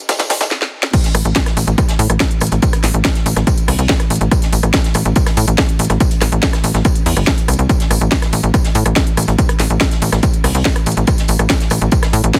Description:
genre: driving peak-time techno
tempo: 142 BPM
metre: 4/4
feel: straight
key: A minor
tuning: A4 = 440 Hz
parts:
  - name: electronic kick drum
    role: drums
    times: 0.1-12.4 s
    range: none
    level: -18 LUFS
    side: equal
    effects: high-pass filter on kick, high-pass filter on room
  - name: techno drum kit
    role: drums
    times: 0.1-12.4 s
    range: crash cymbal, hi-hat, rim click, snare drum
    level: -22 LUFS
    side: equal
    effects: none
  - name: warm soul drum kit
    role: drums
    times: 0.1-12.4 s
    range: hi-hat, snare drum, tambourine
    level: -29 LUFS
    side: equal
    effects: sidechain pumping on hats, high-pass filter on hats, high-pass filter on snare, sidechain pumping on perc, high-pass filter on perc, high-pass filter on room
  - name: tight sequencer bass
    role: bass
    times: 1.1-12.3 s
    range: G1 to A2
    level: -17 LUFS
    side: equal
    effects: sidechain pumping
room: little or no reverb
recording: heavily compressed radio sound, high-pass filter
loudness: -15 LUFS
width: mono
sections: 0.9-12.4 A section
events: drum fill 0.0-0.5, 0.5-0.9; stop 0.5-0.9; drop 0.9-12.4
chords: none

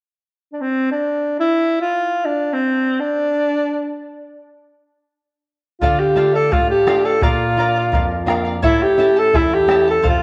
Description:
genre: andean folk, Andean ensemble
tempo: free time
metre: none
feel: none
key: D minor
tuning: A4 = 441 Hz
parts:
  - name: clear alto saxophone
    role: melody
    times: 0.5-10.2 s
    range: C4 to A4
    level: -18 LUFS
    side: equal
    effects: none
  - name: charango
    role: accompaniment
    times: 5.8-10.2 s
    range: E4 to A5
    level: -26 LUFS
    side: equal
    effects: none
  - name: nylon-string guitar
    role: accompaniment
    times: 5.8-10.2 s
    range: E2 to F4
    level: -25 LUFS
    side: equal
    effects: none
  - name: bombo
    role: percussion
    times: 5.8-10.2 s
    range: none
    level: -24 LUFS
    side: equal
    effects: none
room: wet echo chamber reverb, RT60 1.6 s, studio ambience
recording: none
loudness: -17 LUFS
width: mono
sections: 0.2-5.8 A section; 5.8-10.2 B section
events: none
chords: 0.2 N.C.; 5.8 Dm; 7.2 Bb; 8.6 A

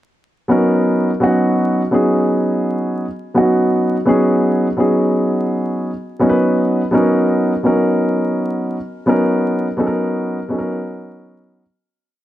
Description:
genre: hip hop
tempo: 84 BPM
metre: 4/4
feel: swing 62% on 16ths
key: B major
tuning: A4 = 440 Hz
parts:
  - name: dark baby grand piano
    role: solo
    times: 0.5-11.7 s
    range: F#3 to B4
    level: -14 LUFS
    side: equal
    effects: none
room: light reverb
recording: dark, warm production, vinyl crackle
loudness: -14 LUFS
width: side -13 dB against mid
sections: 0.5-11.9 A section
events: fade-out 9.1-11.9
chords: 0.5 Bmaj9

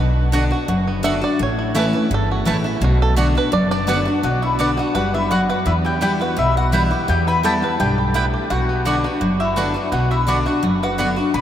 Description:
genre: bluegrass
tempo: 169 BPM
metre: 4/4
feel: straight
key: B minor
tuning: A4 = 442 Hz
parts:
  - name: bluegrass banjo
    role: melody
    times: 0.0-11.4 s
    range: B3 to E5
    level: -26 LUFS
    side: right 4 dB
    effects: none
  - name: picked steel-string acoustic guitar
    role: accompaniment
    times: 0.0-11.4 s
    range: E2 to F#4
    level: -21 LUFS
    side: left 1 dB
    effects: none
  - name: upright bass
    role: bass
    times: 0.0-11.4 s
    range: F#1 to E2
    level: -21 LUFS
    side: equal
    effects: none
  - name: mandolin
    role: stabs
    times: 0.3-11.1 s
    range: A3 to A5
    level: -26 LUFS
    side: right 3 dB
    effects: none
  - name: mandolin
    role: melody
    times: 3.7-11.4 s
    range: D5 to B5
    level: -24 LUFS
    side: left 2 dB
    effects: none
  - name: lap resonator guitar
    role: second line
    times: 3.7-11.4 s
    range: D4 to B4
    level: -25 LUFS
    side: left 3 dB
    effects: none
room: wet huge ambient reverb, RT60 8.0 s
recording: in a vast, echoing space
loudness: -16 LUFS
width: side -10 dB against mid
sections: 0.0-4.2 A section; 4.2-11.4 B section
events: five-string banjo solo 0.0-4.2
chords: 0.0 Bm; 1.4 A; 2.8 Bm; 5.7 Em; 8.5 Bm

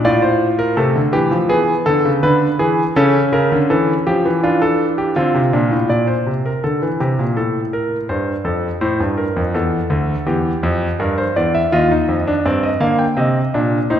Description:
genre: classical, baroque-style 3-part fugue for grand piano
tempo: 82 BPM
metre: 4/4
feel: straight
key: unclear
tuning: A4 = 440 Hz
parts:
  - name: clear concert grand piano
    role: solo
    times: 0.0-14.0 s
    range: D2 to G5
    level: -14 LUFS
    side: equal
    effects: none
room: wet recital hall reverb, RT60 1.7 s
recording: heard from further back in the room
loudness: -14 LUFS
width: side -9 dB against mid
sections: 0.0-5.9 A section; 5.9-14.0 B section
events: none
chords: 0.1 Dm/A; 1.5 E7; 3.0 A/C#; 4.4 Dm; 5.9 C7/Bb; 7.4 F/A; 8.8 Bbmaj7; 10.3 Edim; 11.7 Eb; 13.2 Cm

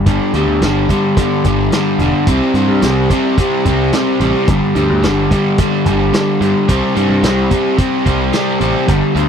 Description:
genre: classic rock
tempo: 109 BPM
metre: 4/4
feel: straight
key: unclear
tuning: A4 = 442 Hz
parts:
  - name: crunchy overdriven guitar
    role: riff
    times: 0.0-9.3 s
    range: G2 to C4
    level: -13 LUFS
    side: equal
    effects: spring reverb
  - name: growling picked electric bass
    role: bass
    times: 0.1-9.3 s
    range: E1 to G2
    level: -17 LUFS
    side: equal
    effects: overdrive
  - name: vintage drum kit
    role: drums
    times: 0.1-9.3 s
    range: hi-hat, kick drum, snare drum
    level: -16 LUFS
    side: equal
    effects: none
room: little or no reverb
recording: dry, close 1970s-style studio recording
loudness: -11 LUFS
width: side -7 dB against mid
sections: 0.1-9.3 A section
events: none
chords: 0.1 G5; 2.3 C5; 4.5 G5; 6.7 C5

